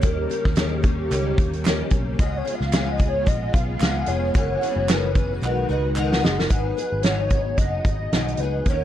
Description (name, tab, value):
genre	indie pop, bedroom pop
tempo	111 BPM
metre	4/4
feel	swing 55% on 16ths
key	B major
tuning	A4 = 437 Hz
part	warbly nostalgic lead	melody	0.0-8.8 s	G4 to E#5	-27 LUFS	equal	ensemble chorus, analog delay
part	picked steel-string acoustic guitar	accompaniment	0.0-8.8 s	F#2 to A#4	-28 LUFS	left 4 dB	ensemble chorus, warbly pitch drift
part	string machine, violas	sustained chords	0.0-6.5 s	C#3 to F#4	-33 LUFS	equal	ensemble chorus
part	vintage muted picked electric bass	bass	0.0-8.8 s	E#1 to D#2	-26 LUFS	equal	none
part	loose indie drum kit	drums	0.0-8.8 s	hi-hat, kick drum, snare drum	-22 LUFS	equal	vintage 12-bit sampler grit
part	group handclap	percussion	0.6-6.1 s	none	-34 LUFS	right 5 dB	none
room	light reverb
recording	dark, warm production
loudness	-19 LUFS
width	side -11 dB against mid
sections	0.0-6.5 A section; 6.5-8.8 B section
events	drum fill 5.4-6.5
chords	0.0 D#7; 2.2 C#7; 4.3 F#9sus4; 5.4 B6